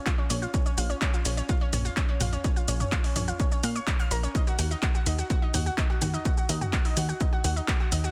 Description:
melodic techno; 126 BPM; 4/4; straight; Eb minor; A4 = 444 Hz
analog pluck; arpeggios; 0.1-8.1 s; Db4 to F6; -36 LUFS; equal; chorus, sidechain pumping, tape echo
electronic kick drum; drums; 0.1-7.8 s; -29 LUFS; equal
punchy analog drum machine; drums; 0.1-8.1 s; handclaps, hi-hat, shaker, toms; -34 LUFS; equal; sidechain pumping on hats, sidechain pumping on perc, sidechain pumping on toms
plucky analog bass; bass; 0.3-8.1 s; Bb1 to Bb2; -30 LUFS; equal; sidechain pumping
little or no reverb; dense, heavily limited modern master; -27 LUFS; mono
0.0-8.1 A section
0.0 Bbm; 4.3 Ebm

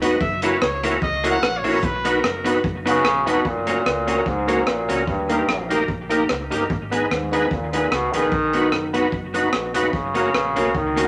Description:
ska; 148 BPM; 4/4; swing 55% on 8ths; F# mixolydian; A4 = 438 Hz
clear trumpet; melody; 0.0-2.5 s; A#4 to F#5; -27 LUFS; equal
vintage hollow-body jazz guitar; accompaniment; 0.0-11.1 s; A#3 to G#4; -29 LUFS; equal; analog delay
overdriven tonewheel organ; stabs; 0.0-11.1 s; A#3 to B4; -25 LUFS; equal; chorus vibrato, slow rotary speaker
hollow-body short-scale fingered electric bass; bass; 0.0-11.1 s; E1 to D#2; -35 LUFS; equal
crunchy breakbeat drum kit; drums; 0.0-11.1 s; hi-hat, kick drum, rim click; -28 LUFS; equal; analog delay
bright trombone; melody; 2.9-11.1 s; G2 to D#3; -25 LUFS; equal
wet studio reverb, RT60 0.6 s; -21 LUFS; mono
0.0-3.4 A section; 3.4-11.1 B section
trumpet solo 0.0-3.4
0.2 F#7; 1.8 B; 3.4 F#; 5.1 D#; 6.7 G#m; 8.3 B; 9.9 F#

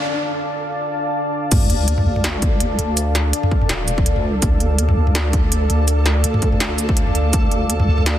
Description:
half-time drum and bass; 165 BPM; 4/4; swing 55% on 16ths, half-time; D minor; A4 = 440 Hz
deep dark ambient pad; sustained chords; 0.0-8.2 s; D4 to A5; -24 LUFS; left 2 dB; chorus, built-in reverb, sidechain pumping
riser and sub drop; sound effects; 0.0-3.0 s; -26 LUFS; equal
flickering grainy texture; texture; 0.0-8.2 s; A4; -29 LUFS; right 2 dB; built-in reverb
deep soft wobble bass; bass; 1.5-8.2 s; Eb1 to D2; -18 LUFS; equal; chorus, tube saturation
electronic kick drum; drums; 1.5-7.4 s; -19 LUFS; equal; high-pass filter on kick, high-pass filter on room
industrial drum kit; drums; 1.5-8.1 s; crash cymbal, hi-hat, shaker, snare drum, toms; -22 LUFS; equal
light reverb, digital ambience; dense, heavily limited modern master; -16 LUFS; side -11 dB against mid
0.0-1.5 A section; 1.5-8.2 B section
build-up 0.0-1.5; break 0.1-1.5; drop 1.5-8.2; impact 1.5-3.0
0.0 Dm

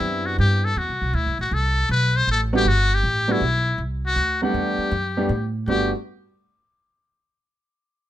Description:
jazz, small-group swing and bop; 159 BPM; 4/4; swing 65% on 8ths; G major; A4 = 440 Hz
trumpet with metal mute; melody; 0.0-5.9 s; E4 to C5; -23 LUFS; left 2 dB
warm baby grand piano; accompaniment; 0.0-5.9 s; G3 to F#5; -24 LUFS; right 1 dB
upright bass; bass; 0.0-5.9 s; G1 to A2; -23 LUFS; equal
light reverb; minimal, uncompressed stereo recording; -19 LUFS; side -13 dB against mid
0.0-5.7 A section; 5.7-7.2 B section
0.0 Cmaj7; 1.1 D7(no3); 2.7 Gmaj9

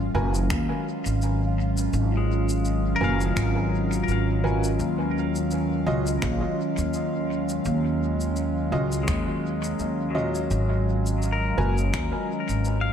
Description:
ambient dub; 84 BPM; 4/4; swing 56% on 16ths; A4 = 440 Hz
warbly tape-like pad; sustained chords; 0.0-12.9 s; Eb3 to Db4; -27 LUFS; equal; chorus, built-in reverb
upright bass; bass; 0.0-12.9 s; Gb1 to Eb2; -26 LUFS; equal
bubbling stepped-filter texture; texture; 0.0-12.9 s; F4 to F5; -36 LUFS; right 4 dB; chorus, built-in reverb
clear upright piano; stabs; 0.1-11.7 s; Db4 to Ab5; -33 LUFS; right 1 dB; dub echo
organic electronic drum kit; drums; 0.1-12.8 s; finger snaps, shaker, toms; -35 LUFS; equal; overdrive, dub echo
electronic kick drum; drums; 0.5-12.1 s; -32 LUFS; equal; overdrive
pedal steel guitar; arpeggios; 2.2-12.9 s; Gb3 to F5; -32 LUFS; left 5 dB; ping-pong delay
moderate plate reverb, RT60 3.1 s; dreamy mix soaked in reverb; -22 LUFS; side -8 dB against mid
0.0-12.9 A section
0.0 Abm9; 4.8 Ebm9; 10.5 Ab7sus2

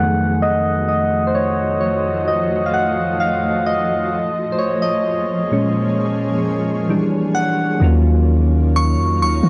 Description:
R&B; 65 BPM; 4/4; straight; Eb minor; A4 = 440 Hz
soft electric-piano-like synth keys; accompaniment; 0.0-9.5 s; F2 to Gb5; -20 LUFS; equal; chorus, low-pass filter
granular cloud pad; sustained chords; 0.0-9.5 s; F3 to F5; -26 LUFS; equal; built-in reverb, low-pass filter
soft 808-style bass; bass; 7.8-9.5 s; Eb2 to Eb3; -17 LUFS; equal
glassy synth bell; melody; 8.8-9.5 s; Db6; -22 LUFS; equal; chorus
light reverb; dry, gritty hardware recording, transformer saturation; -18 LUFS; mono
0.0-7.8 A section; 7.8-9.5 B section
synth keys solo 0.0-7.8; filter sweep 0.0-7.8
0.0 F7b9; 4.1 Bbm7; 6.9 Em9; 7.8 Ebm9

